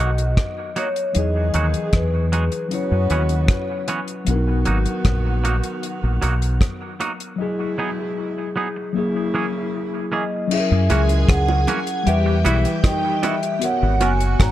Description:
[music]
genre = lovers rock reggae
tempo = 77 BPM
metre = 4/4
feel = straight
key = B major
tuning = A4 = 440 Hz
[part]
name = vibraphone with soft mallets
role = melody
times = 0.0-3.9, 10.1-14.5 s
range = B4 to A#5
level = -24 LUFS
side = left 1 dB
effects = tape echo
[part]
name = clear saxophone section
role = second line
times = 0.0-14.5 s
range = B2 to G#4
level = -31 LUFS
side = right 3 dB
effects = dub echo
[part]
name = mellow tine electric piano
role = accompaniment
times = 0.0-14.5 s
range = E3 to D#5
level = -25 LUFS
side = left 3 dB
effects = medium stereo tremolo, dub echo
[part]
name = twangy electric guitar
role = stabs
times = 0.0-14.1 s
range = E3 to A#4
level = -28 LUFS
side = right 4 dB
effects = dub echo
[part]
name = deep dub fingered electric bass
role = bass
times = 0.0-14.5 s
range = F#1 to F#2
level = -19 LUFS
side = equal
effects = none
[part]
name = deep reggae drum kit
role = drums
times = 0.2-14.5 s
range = crash cymbal, hi-hat, kick drum, rim click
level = -21 LUFS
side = equal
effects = none
[part]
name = phased string machine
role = second line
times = 10.5-14.5 s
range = F#4 to G#5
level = -30 LUFS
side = left 2 dB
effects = ensemble chorus, phaser, dub echo
[part]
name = bongos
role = percussion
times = 10.9-14.2 s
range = none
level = -30 LUFS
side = right 7 dB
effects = none
[sound]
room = light reverb, studio reverb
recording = dark, warm production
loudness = -18 LUFS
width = side -13 dB against mid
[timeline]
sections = 0.0-10.5 A section; 10.5-14.5 B section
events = break 7.4-10.5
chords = 0.0 Bmaj7; 1.2 Emaj9; 2.7 F#7sus4; 4.3 Bmaj7; 7.4 Emaj9; 9.0 F#9; 12.1 Emadd9; 13.6 G#m11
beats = 0.38 | 1.16 1.94 2.72 3.50 | 4.28 5.05 5.83 6.61 | 7.39 8.17 8.95 9.73 | 10.51 11.29 12.07 12.85 | 13.63 14.40

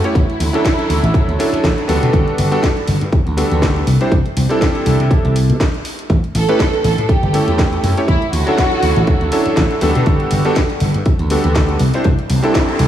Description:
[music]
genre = nu-disco, nu disco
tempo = 121 BPM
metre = 4/4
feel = swing 56% on 16ths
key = unclear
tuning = A4 = 440 Hz
[part]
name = warm symphonic violin section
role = melody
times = 0.0-1.9, 6.4-9.3 s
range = E4 to A4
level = -21 LUFS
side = right 1 dB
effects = diffuse ambient delay
[part]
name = bright electric grand piano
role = accompaniment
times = 0.0-12.9 s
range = F#3 to C#5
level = -18 LUFS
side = equal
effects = diffuse ambient delay
[part]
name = house drum kit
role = drums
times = 0.0-12.9 s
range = hi-hat, snare drum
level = -24 LUFS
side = equal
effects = none
[part]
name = slap bass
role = bass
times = 0.1-12.9 s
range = G1 to C3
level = -16 LUFS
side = equal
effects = none
[part]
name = electronic kick drum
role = drums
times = 0.2-12.7 s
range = none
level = -16 LUFS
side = equal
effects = none
[part]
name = noise sweep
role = sound effects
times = 12.2-12.9 s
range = none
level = -26 LUFS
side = right 4 dB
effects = none
[sound]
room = moderate lush hall reverb, RT60 2.3 s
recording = dreamy mix soaked in reverb, small room ambience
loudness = -13 LUFS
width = side -11 dB against mid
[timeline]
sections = 0.0-12.9 A section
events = noise sweep 12.2-12.9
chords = 0.2 Dmaj9; 2.1 Gmaj9; 3.9 C69; 6.1 A7; 8.1 Dmaj9; 10.1 Gmaj9; 11.8 C69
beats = | 0.15 0.65 1.14 1.64 | 2.13 2.63 3.13 3.62 | 4.12 4.61 5.11 5.61 | 6.10 6.60 7.09 7.59 | 8.09 8.58 9.08 9.57 | 10.07 10.56 11.06 11.56 | 12.05 12.55

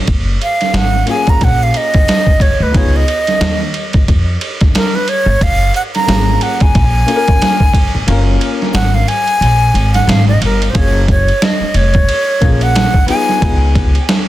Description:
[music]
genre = hip hop, jazz-hop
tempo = 90 BPM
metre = 4/4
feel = swing 59% on 16ths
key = F# major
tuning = A4 = 439 Hz
[part]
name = upright bass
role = bass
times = 0.1-14.0 s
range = E#1 to E#2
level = -13 LUFS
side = equal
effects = none
[part]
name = trip hop sampler-style drum kit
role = drums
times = 0.1-14.3 s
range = hi-hat, kick drum, ride cymbal, snare drum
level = -14 LUFS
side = equal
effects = overdrive
[part]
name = breathy jazz flute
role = melody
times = 0.4-13.7 s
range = A#4 to A#5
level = -16 LUFS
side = right 1 dB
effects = ping-pong delay
[part]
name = dark upright piano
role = accompaniment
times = 1.1-13.9 s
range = E#3 to A#4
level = -20 LUFS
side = left 4 dB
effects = none
[sound]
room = small room reverb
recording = dense, heavily limited modern master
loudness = -10 LUFS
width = side -14 dB against mid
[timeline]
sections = 0.1-10.7 A section; 10.7-14.3 B section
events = flute solo 0.1-10.7; kick muted 8.1-10.7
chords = 0.1 F#maj7; 2.7 C#7; 5.4 F#maj7 (rootless); 10.7 F#maj7; 13.4 C#7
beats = | 0.08 0.75 1.41 2.08 | 2.75 3.41 4.08 4.75 | 5.41 6.08 6.75 7.41 | 8.08 8.75 9.41 10.08 | 10.75 11.41 12.08 12.75 | 13.41 14.08

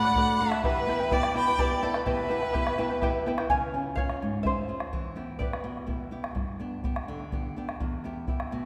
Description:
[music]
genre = andean folk, Andean ensemble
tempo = 84 BPM (dotted quarters)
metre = 6/8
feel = straight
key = E dorian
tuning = A4 = 439 Hz
[part]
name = hollow large quena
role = melody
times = 0.0-3.2 s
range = D5 to B5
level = -31 LUFS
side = equal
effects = none
[part]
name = clear violin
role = second line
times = 0.0-3.2 s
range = A4 to G5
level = -33 LUFS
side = equal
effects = none
[part]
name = charango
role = accompaniment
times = 0.0-6.1 s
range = E4 to G#5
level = -33 LUFS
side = equal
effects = none
[part]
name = flamenco guitar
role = accompaniment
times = 0.0-8.7 s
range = E2 to G5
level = -36 LUFS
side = equal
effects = none
[part]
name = bombo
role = percussion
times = 0.2-8.6 s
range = none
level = -35 LUFS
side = equal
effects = none
[sound]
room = wet concert hall reverb, RT60 2.2 s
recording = recorded in a church or concert hall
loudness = -29 LUFS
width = mono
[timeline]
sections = 0.0-3.5 A section; 3.5-8.7 B section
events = nylon-string guitar fill 2.8-3.5; charango solo 3.5-8.7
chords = 0.0 D; 0.6 Em; 3.5 C#; 4.9 Em; 6.4 G; 7.8 Em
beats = | 0.64 1.36 | 2.07 2.78 | 3.50 4.21 | 4.93 5.65 | 6.36 7.08 | 7.80 8.52

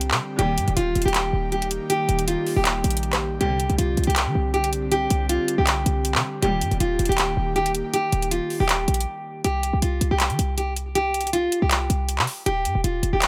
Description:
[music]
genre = hip hop, trap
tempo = 159 BPM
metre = 4/4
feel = half-time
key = C minor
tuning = A4 = 439 Hz
[part]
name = nylon-string guitar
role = melody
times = 0.0-13.3 s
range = F4 to G4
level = -27 LUFS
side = equal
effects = low-pass filter, tape echo
[part]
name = airy breathy pad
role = sustained chords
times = 0.0-9.4 s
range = D3 to G4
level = -33 LUFS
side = equal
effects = chorus
[part]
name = short 808-style bass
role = bass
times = 0.0-13.3 s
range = Eb1 to Eb3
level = -27 LUFS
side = equal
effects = none
[part]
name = trap drum kit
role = drums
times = 0.0-13.3 s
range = handclaps, hi-hat, rim click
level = -27 LUFS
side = equal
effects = none
[part]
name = dark symphonic string section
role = stabs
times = 0.4-0.7, 3.4-3.7, 6.4-6.7 s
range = Bb2 to G3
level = -32 LUFS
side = equal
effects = tape echo
[sound]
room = digital ambience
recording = echo-heavy mix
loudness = -23 LUFS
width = mono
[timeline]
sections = 0.0-9.4 A section; 9.4-13.3 B section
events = break 9.1-9.4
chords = 0.4 Eb; 3.4 Csus2; 6.4 Eb; 9.4 C5; 12.5 Eb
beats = 0.01 | 0.39 0.77 1.14 1.52 | 1.90 2.27 2.65 3.03 | 3.41 3.78 4.16 4.54 | 4.92 5.29 5.67 6.05 | 6.42 6.80 7.18 7.56 | 7.93 8.31 8.69 9.07 | 9.44 9.82 10.20 10.58 | 10.95 11.33 11.71 12.09 | 12.46 12.84 13.22

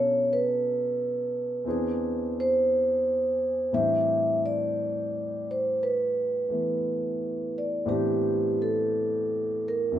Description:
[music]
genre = jazz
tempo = 58 BPM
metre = 4/4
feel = swing 68% on 8ths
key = A minor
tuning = A4 = 439 Hz
[part]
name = vibraphone with soft mallets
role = melody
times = 0.0-10.0 s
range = G4 to E5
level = -25 LUFS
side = right 1 dB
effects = none
[part]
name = warm concert grand piano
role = accompaniment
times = 0.0-10.0 s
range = E2 to A4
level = -31 LUFS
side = left 1 dB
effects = none
[sound]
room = moderate studio reverb, RT60 0.8 s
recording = none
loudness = -24 LUFS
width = side -11 dB against mid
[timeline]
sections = 0.0-10.0 A section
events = none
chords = 0.0 Bm7; 1.7 E7b13; 3.7 Am11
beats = 0.62 1.65 2.68 | 3.72 4.75 5.78 6.82 | 7.85 8.89 9.94

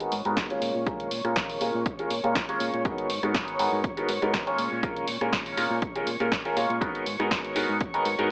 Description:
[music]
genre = filtered disco house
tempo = 121 BPM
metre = 4/4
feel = swing 54% on 16ths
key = G# dorian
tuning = A4 = 440 Hz
[part]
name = bright concert grand piano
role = accompaniment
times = 0.0-8.3 s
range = G#3 to C#5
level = -30 LUFS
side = equal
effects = phaser, sidechain pumping, low-pass filter
[part]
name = dark studio string section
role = sustained chords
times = 0.0-8.3 s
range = C#5 to C#6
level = -37 LUFS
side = equal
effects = sidechain pumping, low-pass filter
[part]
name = punchy analog drum machine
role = drums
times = 0.0-8.3 s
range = hi-hat, rim click, snare drum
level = -34 LUFS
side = equal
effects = sidechain pumping on hats
[part]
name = modern bright fingered electric bass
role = bass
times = 0.1-8.3 s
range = G#1 to A#2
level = -37 LUFS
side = equal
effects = sidechain pumping, low-pass filter
[part]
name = electronic kick drum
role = drums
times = 0.4-7.9 s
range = none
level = -35 LUFS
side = equal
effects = overdrive
[sound]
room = light reverb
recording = AM radio sound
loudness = -27 LUFS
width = mono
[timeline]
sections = 0.0-8.3 A section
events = filter sweep 0.0-8.3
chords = 0.0 G#m7; 0.6 A#m7; 2.8 G#m7; 4.6 A#m7; 6.8 G#m7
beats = 0.37 | 0.86 1.36 1.85 2.35 | 2.85 3.34 3.84 4.33 | 4.83 5.33 5.82 6.32 | 6.81 7.31 7.80 8.30

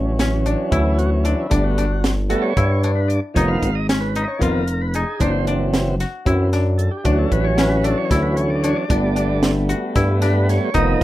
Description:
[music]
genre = progressive instrumental, band music in an uneven meter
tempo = 227 BPM (eighths)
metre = 7/8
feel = straight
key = D major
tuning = A4 = 440 Hz
[part]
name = tonewheel organ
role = accompaniment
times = 0.0-11.0 s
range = Eb3 to E#5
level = -22 LUFS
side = right 1 dB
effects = overdrive, slow rotary speaker
[part]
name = koto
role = arpeggios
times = 0.0-11.0 s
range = C#4 to F#4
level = -25 LUFS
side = left 4 dB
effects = none
[part]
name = smooth synth bass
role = bass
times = 0.0-11.0 s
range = E#1 to G2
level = -19 LUFS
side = equal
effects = none
[part]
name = compact cocktail drum kit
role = drums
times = 0.2-11.0 s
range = hi-hat, kick drum, snare drum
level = -22 LUFS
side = equal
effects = none
[sound]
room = light reverb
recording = rough home demo mix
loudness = -16 LUFS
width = side -15 dB against mid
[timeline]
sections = 0.0-11.0 A section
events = tonewheel organ solo 0.0-11.0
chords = 0.0 Dmaj7; 1.5 Gadd9; 3.4 C#7/E#; 5.2 D7/F#; 7.1 Dmaj7; 8.9 Gadd9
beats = 0.19 0.46 0.72 0.98 1.25 | 1.51 1.77 2.04 2.30 2.57 2.83 3.10 | 3.36 3.62 3.89 4.15 4.42 4.68 4.94 | 5.21 5.47 5.73 6.00 6.26 6.53 6.79 | 7.05 7.32 7.58 7.84 8.11 8.37 8.63 | 8.90 9.16 9.43 9.69 9.95 10.22 10.48 | 10.74 11.01

